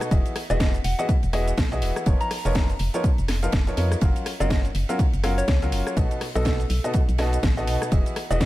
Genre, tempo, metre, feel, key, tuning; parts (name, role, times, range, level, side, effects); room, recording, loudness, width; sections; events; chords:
piano house; 123 BPM; 4/4; swing 59% on 16ths; F# major; A4 = 441 Hz
clear upright piano; riff; 0.0-8.5 s; B2 to E#5; -28 LUFS; equal; sidechain pumping, digital delay
house drum kit; drums; 0.0-8.5 s; hi-hat, rim click, shaker, snare drum; -30 LUFS; equal; small room ambience
organ-like FM bass; bass; 0.1-8.5 s; E1 to E#2; -24 LUFS; equal; sidechain pumping
damped 70s drum kit; drums; 0.1-8.5 s; hi-hat, ride cymbal, snare drum; -40 LUFS; right 3 dB; sidechain pumping on cymbals, high-pass filter on cymbals, small room ambience, sidechain pumping on hats, high-pass filter on hats, high-pass filter on snare, high-pass filter on room
electronic kick drum; drums; 0.1-8.5 s; -22 LUFS; equal; small room ambience
soft struck synth lead; melody; 0.5-8.5 s; A4 to A#5; -32 LUFS; left 1 dB; chorus, digital delay
studio ambience; -20 LUFS; side -16 dB against mid
0.0-8.5 A section
0.1 Emaj9; 2.1 C#13/E#; 4.0 F#maj7; 6.0 B7; 7.9 Emaj9